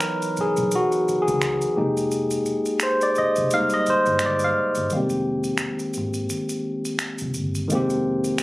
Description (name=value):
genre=R&B, neo-soul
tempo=86 BPM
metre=4/4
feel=swing 56% on 16ths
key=F minor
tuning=A4 = 439 Hz
part: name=barky tine electric piano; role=accompaniment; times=0.0-8.4 s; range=Eb3 to F5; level=-21 LUFS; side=equal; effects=none
part: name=finger snaps and maracas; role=percussion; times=0.0-8.4 s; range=none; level=-30 LUFS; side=right 1 dB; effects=none
part: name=vintage muted fingered electric bass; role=bass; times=0.4-8.3 s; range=F1 to Db2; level=-30 LUFS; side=equal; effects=none
room=moderate studio reverb, RT60 0.5 s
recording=recorded on a phone in the room, club reverb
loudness=-20 LUFS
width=side -18 dB against mid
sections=0.0-4.9 A section; 4.9-8.4 B section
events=tine electric piano solo 0.0-4.9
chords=0.0 Dbm11; 1.8 Fm11